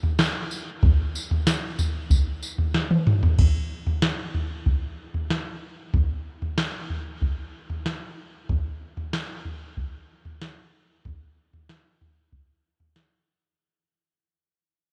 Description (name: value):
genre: dream pop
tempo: 94 BPM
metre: 4/4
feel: straight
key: none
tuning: none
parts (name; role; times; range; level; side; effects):
- soft vintage rhythm box; drums; 0.0-13.1 s; crash cymbal, kick drum, snare drum, tambourine, toms; -25 LUFS; equal; none
room: light reverb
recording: worn, warbling old tape, cassette tape, warbly pitch drift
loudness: -25 LUFS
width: mono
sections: 0.0-3.4 A section; 3.4-13.6 B section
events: drum fill 2.7-3.4; fade-out 3.4-13.6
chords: none